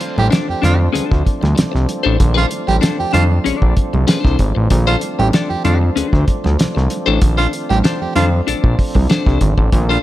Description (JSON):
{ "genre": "funk", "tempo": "96 BPM", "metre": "4/4", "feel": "straight", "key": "unclear", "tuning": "A4 = 438 Hz", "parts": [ { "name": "clean electric guitar", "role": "accompaniment", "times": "0.0-10.0 s", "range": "D4 to D5", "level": "-21 LUFS", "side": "left 8 dB", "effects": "phaser" }, { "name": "tonewheel organ", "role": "sustained chords", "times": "0.0-10.0 s", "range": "F3 to D4", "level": "-25 LUFS", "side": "right 1 dB", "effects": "chorus vibrato, wide subtle chorus" }, { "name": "cloth-damped thuddy drum kit", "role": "drums", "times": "0.0-9.9 s", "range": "hi-hat, kick drum, snare drum", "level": "-17 LUFS", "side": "equal", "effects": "none" }, { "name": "congas", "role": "percussion", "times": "0.0-9.9 s", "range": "none", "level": "-25 LUFS", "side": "right 5 dB", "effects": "none" }, { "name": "clear baritone saxophone", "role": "second line", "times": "0.2-10.0 s", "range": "F4 to G4", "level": "-21 LUFS", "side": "right 5 dB", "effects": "none" }, { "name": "fat analog bass", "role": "bass", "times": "0.2-10.0 s", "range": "G#1 to F2", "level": "-15 LUFS", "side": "equal", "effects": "none" } ], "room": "little or no reverb", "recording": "none", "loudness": "-13 LUFS", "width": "side -14 dB against mid", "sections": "0.0-10.0 A section", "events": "none", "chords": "0.0 Bbmaj9" }